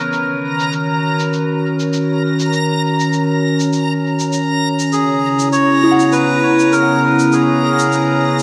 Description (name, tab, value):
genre	ambient dub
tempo	100 BPM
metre	4/4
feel	swing 56% on 16ths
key	unclear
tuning	A4 = 439 Hz
part	warbly tape-like pad	sustained chords	0.0-8.4 s	C#3 to C#5	-18 LUFS	equal	chorus, built-in reverb
part	backwards swelling texture	texture	0.0-8.4 s	A#5	-25 LUFS	equal	built-in reverb
part	shaker	drums	0.1-8.4 s	none	-31 LUFS	equal	low-pass filter on perc, small room ambience
part	melodica	melody	4.9-8.4 s	G#4 to C#5	-21 LUFS	equal	dub echo
part	soft synth bell	arpeggios	5.8-8.4 s	E4 to F#5	-22 LUFS	equal	chorus, dub echo
room	wet echo chamber reverb, RT60 2.4 s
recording	none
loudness	-15 LUFS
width	mono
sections	0.0-8.4 A section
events	none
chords	0.1 D#m7; 4.9 C#m7